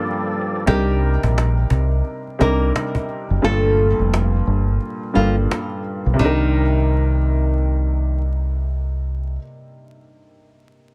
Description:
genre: hip hop, boom-bap hip-hop.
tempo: 87 BPM.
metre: 4/4.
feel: swing 62% on 16ths.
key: C minor.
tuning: A4 = 440 Hz.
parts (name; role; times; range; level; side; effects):
warm upright piano; accompaniment; 0.0-10.9 s; G2 to Bb4; -26 LUFS; equal; cassette tape, high-pass filter, low-pass filter.
tonewheel organ; sustained chords; 0.0-0.7 s; F3 to D5; -28 LUFS; equal; overdrive, chorus vibrato, subtle chorus, high-pass filter, low-pass filter.
nylon-string guitar; melody; 0.7-8.2 s; Eb3 to Bb4; -26 LUFS; equal; high-pass filter, low-pass filter.
deep dub fingered electric bass; bass; 0.7-9.4 s; F1 to C2; -20 LUFS; equal; none.
cajon; drums; 0.7-6.4 s; none; -27 LUFS; equal; none.
room: light reverb.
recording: vinyl crackle.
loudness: -19 LUFS.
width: mono.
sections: 0.7-6.2 A section; 6.2-8.9 B section.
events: break 0.0-0.7; kick muted 3.4-6.2.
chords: 0.0 Gm9; 0.7 Cm9; 3.4 Gm9; 6.2 Cm9.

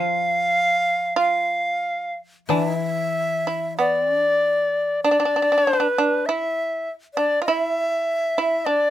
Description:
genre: japanese traditional, Japanese chamber music.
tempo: 45-50 BPM.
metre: 4/4.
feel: rubato.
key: unclear.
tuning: A4 = 440 Hz.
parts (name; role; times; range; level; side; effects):
bright reedy long shakuhachi; melody; 0.0-8.9 s; D5 to F5; -20 LUFS; left 1 dB; none.
shamisen; second line; 0.0-8.9 s; D4 to F4; -24 LUFS; right 4 dB; none.
koto; accompaniment; 0.0-5.9 s; E3 to F3; -28 LUFS; left 7 dB; none.
room: light reverb.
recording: close, detailed microphones.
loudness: -19 LUFS.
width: side -12 dB against mid.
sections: 0.0-8.9 A section.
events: none.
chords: none.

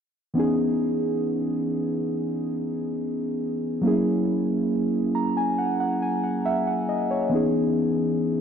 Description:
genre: R&B.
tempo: 69 BPM.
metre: 4/4.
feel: straight.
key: C# dorian.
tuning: A4 = 439 Hz.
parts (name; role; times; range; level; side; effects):
muted felt-like synth keys; accompaniment; 0.3-8.4 s; E3 to A#5; -22 LUFS; equal; chorus.
room: moderate plate reverb, RT60 2.9 s.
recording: dark, warm production, nothing above 10.7 kHz.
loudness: -22 LUFS.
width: side -7 dB against mid.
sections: 0.4-8.4 A section.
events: synth keys fill 4.7-7.3.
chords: 0.4 C#m9; 3.8 F#9; 7.3 C#m9.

